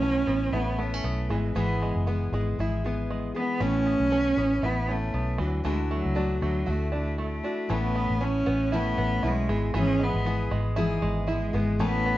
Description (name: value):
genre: acoustic pop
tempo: 117 BPM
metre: 4/4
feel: swing 55% on 16ths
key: A major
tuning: A4 = 440 Hz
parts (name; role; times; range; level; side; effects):
- rich cello; melody; 0.0-12.2 s; F#3 to C#4; -28 LUFS; right 2 dB; none
- picked steel-string acoustic guitar; accompaniment; 0.0-12.2 s; G#2 to G#4; -31 LUFS; left 3 dB; none
- open-back banjo; arpeggios; 0.0-12.2 s; E3 to F#4; -34 LUFS; right 3 dB; slapback echo
- vintage muted fingered electric bass; bass; 0.0-12.2 s; F#1 to D2; -28 LUFS; equal; none
room: light reverb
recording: worn, warbling old tape, cassette tape, warbly pitch drift, nothing above 7.9 kHz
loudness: -24 LUFS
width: side -15 dB against mid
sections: 0.0-7.7 A section; 7.7-12.2 B section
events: none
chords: 0.0 Aadd9; 1.3 E; 3.6 Aadd9; 5.4 Dadd9; 7.7 Aadd9; 9.5 E/G#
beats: 0.02 0.53 1.04 | 1.55 2.06 2.57 3.09 | 3.60 4.11 4.62 5.13 | 5.64 6.16 6.67 7.18 | 7.69 8.21 8.72 9.23 | 9.74 10.26 10.77 11.28 | 11.79